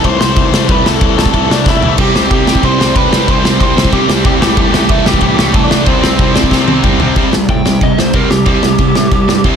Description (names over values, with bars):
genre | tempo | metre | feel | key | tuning
punk rock | 185 BPM | 4/4 | straight | C major | A4 = 441 Hz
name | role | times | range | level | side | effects
raw garage guitar | melody | 0.0-9.4 s | C4 to C6 | -16 LUFS | right 1 dB | overdrive
distorted electric guitar | riff | 0.0-9.6 s | A2 to C4 | -16 LUFS | left 17 dB | overdrive
fuzz picked electric bass | bass | 0.0-9.6 s | C2 to A2 | -17 LUFS | equal | overdrive
loose indie drum kit | drums | 0.0-9.5 s | crash cymbal, kick drum, ride cymbal, snare drum, toms | -13 LUFS | equal | none
crunchy overdriven guitar | riff | 2.0-9.6 s | A2 to C4 | -16 LUFS | right 13 dB | none
room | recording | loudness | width
little or no reverb | dense, heavily limited modern master | -8 LUFS | side -7 dB against mid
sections
0.0-7.2 A section; 7.2-9.6 B section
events
drum fill 1.7-2.0, 6.5-7.2; overdriven electric guitar solo 7.2-9.6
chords
0.0 Am/C; 2.0 C5; 4.4 Am/C; 5.9 C5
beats
0.04 0.37 | 0.69 1.02 1.34 1.66 | 1.99 2.31 2.63 2.96 | 3.28 3.60 3.93 4.25 | 4.58 4.90 5.22 5.54 | 5.87 6.19 6.52 6.84 | 7.16 7.49 7.81 8.14 | 8.46 8.79 9.12 9.44